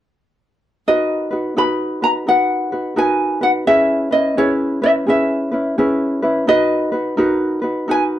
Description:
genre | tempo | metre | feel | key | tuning
Hawaiian | 86 BPM | 4/4 | swing 64% on 8ths | B major | A4 = 440 Hz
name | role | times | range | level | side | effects
ukulele | melody | 0.9-8.0 s | C#5 to B5 | -17 LUFS | equal | none
ukulele | accompaniment | 0.9-8.2 s | C#4 to B4 | -18 LUFS | equal | none
room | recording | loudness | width
light reverb | dry, close 1970s-style studio recording | -15 LUFS | side -12 dB against mid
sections
0.9-6.5 A section; 6.5-8.2 B section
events
none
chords
0.9 Bmaj7; 3.7 C#m7; 6.5 Bmaj7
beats
| 0.87 1.57 2.27 2.97 | 3.67 4.37 5.08 5.78 | 6.48 7.18 7.88

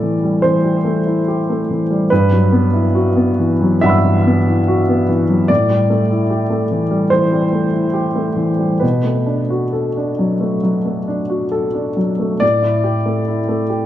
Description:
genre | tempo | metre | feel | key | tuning
neoclassical minimalist piano | 65-75 BPM | 4/4 | rubato | A dorian | A4 = 440 Hz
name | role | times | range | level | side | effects
warm upright piano | solo | 0.0-13.9 s | G2 to E6 | -14 LUFS | equal | none
room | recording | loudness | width
wet stone room reverb, RT60 1.3 s | band playing live in one room | -14 LUFS | side -12 dB against mid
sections
0.0-12.4 A section; 12.4-13.9 A section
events
none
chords
0.0 Am7; 2.1 Emadd9/G; 5.5 Am7; 8.8 Bm7; 12.4 A7(no3)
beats
0.43 1.26 | 2.10 2.94 3.83 4.67 | 5.49 6.29 7.10 7.94 | 8.82 9.74 10.64 11.52 | 12.42 13.28

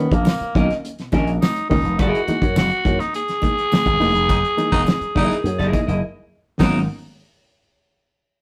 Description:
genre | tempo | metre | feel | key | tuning
funk | 104 BPM | 4/4 | straight | unclear | A4 = 440 Hz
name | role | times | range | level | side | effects
raspy tenor saxophone | melody | 0.0-6.0 s | A#3 to G#4 | -24 LUFS | equal | none
reed electric piano | stabs | 0.0-6.8 s | B2 to D#4 | -26 LUFS | equal | overdrive, fast tremolo
slap bass with an envelope filter | bass | 0.1-6.9 s | E1 to F#2 | -24 LUFS | equal | none
damped 70s drum kit | drums | 0.1-6.7 s | hi-hat, kick drum, snare drum | -23 LUFS | equal | none
congas | percussion | 0.2-6.9 s | none | -34 LUFS | equal | none
tambourine | percussion | 0.3-6.9 s | none | -45 LUFS | equal | none
clean electric guitar | accompaniment | 0.6-6.8 s | B3 to D#5 | -27 LUFS | equal | phaser
raspy baritone saxophone | second line | 4.3-6.8 s | D#4 | -27 LUFS | equal | none
room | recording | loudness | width
moderate studio reverb, RT60 0.7 s | rough rehearsal-room recording, warm saturation | -19 LUFS | mono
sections
0.0-6.6 A section; 6.6-8.4 B section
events
band accent 4.3-6.6; break 6.0-6.6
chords
0.0 Bmaj9; 2.0 F#13; 6.6 G#m11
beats
0.26 0.83 1.41 | 1.99 2.56 3.14 3.71 | 4.29 4.87 5.44 6.02 | 6.59

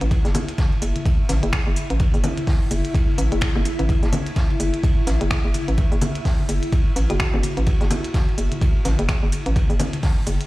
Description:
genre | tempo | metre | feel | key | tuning
minimal techno | 127 BPM | 4/4 | swing 59% on 16ths | F# minor | A4 = 440 Hz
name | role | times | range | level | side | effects
hollow knocking FM bass | bass | 0.0-10.4 s | F#1 to A1 | -22 LUFS | equal | sidechain pumping
minimal click drum kit | drums | 0.0-10.5 s | finger snaps, hi-hat | -30 LUFS | equal | none
granular cloud pad | texture | 0.0-10.5 s | E4 | -31 LUFS | left 1 dB | built-in reverb, sidechain pumping
electronic kick drum | drums | 0.1-10.1 s | none | -20 LUFS | equal | none
raw garage drum kit | drums | 0.1-10.4 s | hi-hat, ride cymbal, snare drum | -35 LUFS | right 1 dB | sidechain pumping on cymbals, high-pass filter on cymbals, sidechain pumping on hats, high-pass filter on hats, high-pass filter on snare, high-pass filter on room
congas | percussion | 0.2-10.4 s | none | -28 LUFS | left 2 dB | tape echo
kalimba | melody | 7.1-7.3 s | F#4 | -34 LUFS | right 2 dB | tape echo
room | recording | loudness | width
small room ambience | played on a big sound system in a bare room, large studio reverb | -18 LUFS | side -18 dB against mid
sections
0.0-10.5 A section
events
none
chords
0.0 F#m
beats
| 0.11 0.58 1.05 1.53 | 2.00 2.47 2.94 3.42 | 3.89 4.36 4.83 5.31 | 5.78 6.25 6.72 7.20 | 7.67 8.14 8.61 9.09 | 9.56 10.03

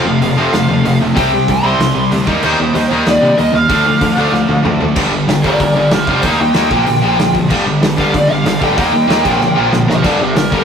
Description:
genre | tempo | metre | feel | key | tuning
punk rock | 189 BPM | 4/4 | straight | G minor | A4 = 442 Hz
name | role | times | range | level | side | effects
lead guitar through a small cranked amp | melody | 0.0-10.6 s | G4 to C6 | -16 LUFS | right 1 dB | overdrive
distorted electric guitar | riff | 0.0-10.6 s | F2 to Eb4 | -15 LUFS | left 4 dB | distortion
high-gain distorted guitar | riff | 0.0-10.6 s | F2 to Eb4 | -22 LUFS | right 2 dB | distortion
tight distorted guitar | riff | 0.0-10.6 s | G2 to C4 | -19 LUFS | right 6 dB | distortion
growling picked electric bass | bass | 0.1-10.6 s | F1 to C3 | -21 LUFS | equal | overdrive
loose indie drum kit | drums | 0.2-10.6 s | crash cymbal, hi-hat, kick drum, snare drum, toms | -19 LUFS | equal | none
room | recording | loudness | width
moderate studio reverb, RT60 0.6 s | rough rehearsal-room recording | -10 LUFS | side -7 dB against mid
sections
0.0-5.0 A section; 5.0-10.6 B section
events
half time 0.0-5.0; drum fill 4.3-5.0, 9.4-10.1; lead electric guitar solo 5.0-10.6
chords
0.0 F; 1.2 C5; 2.3 Eb; 3.7 Dm; 5.0 Gm; 6.2 Eb; 6.7 Bb; 7.5 G5; 8.8 Eb; 9.3 Bb; 10.1 Gm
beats
0.22 0.53 0.85 | 1.17 1.48 1.80 2.12 | 2.43 2.75 3.07 3.38 | 3.70 4.02 4.33 4.65 | 4.97 5.29 5.60 5.92 | 6.24 6.56 6.88 7.19 | 7.51 7.83 8.15 8.46 | 8.78 9.10 9.42 9.74 | 10.05 10.37

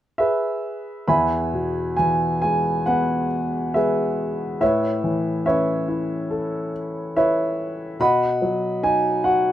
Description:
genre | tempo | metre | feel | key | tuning
classical, lyrical solo piano | 67-73 BPM | 4/4 | rubato | E major | A4 = 439 Hz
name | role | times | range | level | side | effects
warm grand piano | solo | 0.2-9.5 s | E2 to B5 | -19 LUFS | equal | none
room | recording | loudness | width
light reverb | none | -20 LUFS | side -12 dB against mid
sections
0.0-1.1 A section; 1.1-9.5 B section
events
none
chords
0.0 E; 4.6 Aadd9; 8.0 B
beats
0.19 | 1.08 1.98 2.87 3.75 | 4.62 5.46 6.32 7.17 | 8.01 8.84

